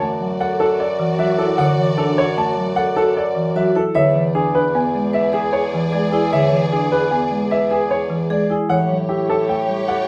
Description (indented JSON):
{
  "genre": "classical, minimalist pattern music",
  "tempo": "152 BPM",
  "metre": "6/4",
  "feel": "straight",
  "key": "unclear",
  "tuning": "A4 = 440 Hz",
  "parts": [
    { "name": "clear baby grand piano", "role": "melody", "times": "0.0-10.1 s", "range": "G4 to A5", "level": "-22 LUFS", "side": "equal", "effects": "none" },
    { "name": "folk marimba with medium hard mallets", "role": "accompaniment", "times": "0.0-9.9 s", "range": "D3 to B3", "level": "-25 LUFS", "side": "equal", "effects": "none" },
    { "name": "warm symphonic violin section", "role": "sustained chords", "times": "0.0-10.1 s", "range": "F#4 to D5", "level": "-31 LUFS", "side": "equal", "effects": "none" },
    { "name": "mellow bassoon", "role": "bass", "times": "0.0-10.1 s", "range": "E2 to A2", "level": "-26 LUFS", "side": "equal", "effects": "none" },
    { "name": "vibraphone with medium hard mallets", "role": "arpeggios", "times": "0.4-10.1 s", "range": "D4 to C#5", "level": "-25 LUFS", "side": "equal", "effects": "none" }
  ],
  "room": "light reverb",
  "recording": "none",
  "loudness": "-18 LUFS",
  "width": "mono",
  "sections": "0.0-10.1 A section",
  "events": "none",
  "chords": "0.0 D/F#; 4.0 E7; 8.7 A7",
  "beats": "0.01 0.41 0.80 1.19 | 1.59 1.98 2.38 2.77 3.17 3.56 | 3.96 4.35 4.75 5.14 5.54 5.93 | 6.33 6.72 7.12 7.51 7.91 8.30 | 8.69 9.09 9.48 9.88"
}